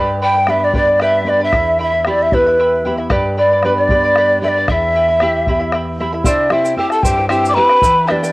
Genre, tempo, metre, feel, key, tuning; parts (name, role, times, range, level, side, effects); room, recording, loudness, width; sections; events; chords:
andean folk, Andean ensemble; 76 BPM (dotted quarters); 6/8; straight; A4 = 441 Hz
charango; accompaniment; 0.0-8.3 s; E4 to B5; -20 LUFS; right 1 dB; cassette tape
nylon-string guitar; accompaniment; 0.0-8.3 s; E2 to G4; -21 LUFS; equal; cassette tape
breathy mellow large quena; melody; 0.2-8.3 s; B4 to D6; -14 LUFS; equal
breathy pan flute; second line; 0.2-8.3 s; D4 to G5; -20 LUFS; left 1 dB; cassette tape
bombo; percussion; 0.5-8.2 s; -20 LUFS; left 1 dB
tube shaker; percussion; 6.3-8.3 s; -28 LUFS; right 3 dB
light reverb, small room ambience; home recording on cassette; -12 LUFS; side -20 dB against mid
0.0-6.3 A section; 6.3-8.3 B section
0.0 G; 1.5 Em; 3.1 G; 4.7 Em; 6.3 C